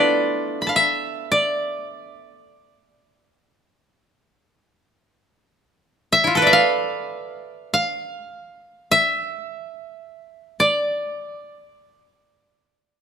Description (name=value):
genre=japanese traditional, Japanese chamber music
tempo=free time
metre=none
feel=none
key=D kumoi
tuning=A4 = 440 Hz
part: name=koto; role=solo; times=0.0-13.0 s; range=A3 to B5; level=-18 LUFS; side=equal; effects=none
room=light reverb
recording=close, detailed microphones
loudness=-18 LUFS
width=side -8 dB against mid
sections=0.0-13.0 A section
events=none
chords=none